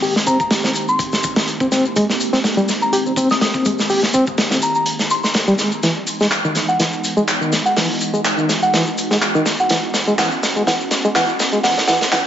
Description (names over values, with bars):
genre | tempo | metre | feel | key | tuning
breakbeat, breaks | 124 BPM | 4/4 | swing 54% on 16ths | unclear | A4 = 440 Hz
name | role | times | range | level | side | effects
warbly tape-like pad | sustained chords | 0.0-12.3 s | Eb3 to G4 | -24 LUFS | equal | chorus, built-in reverb, phaser, sidechain pumping
bright reed electric piano | riff | 0.0-12.2 s | D#3 to G4 | -19 LUFS | equal | fast tremolo, low-pass filter, dub echo
crunchy breakbeat drum kit | drums | 0.0-12.3 s | hi-hat, kick drum, snare drum | -19 LUFS | equal | high-pass filter on kick, high-pass filter on hats, high-pass filter on snare, high-pass filter on room
electronic shaker and handclaps | drums | 0.0-12.2 s | none | -24 LUFS | left 1 dB | none
soft synth bell | melody | 0.3-12.2 s | F#5 to Eb6 | -21 LUFS | equal | chorus, small speaker sound, dub echo
room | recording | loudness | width
moderate small room reverb, RT60 0.6 s | vinyl crackle, high-pass filter, nothing above 7.7 kHz | -15 LUFS | side -10 dB against mid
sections
0.0-12.3 A section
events
build-up 0.0-12.3; filter sweep on reed electric piano 0.0-12.3; drum fill 5.8-12.3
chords
0.0 Abmaj9; 5.6 Emaj9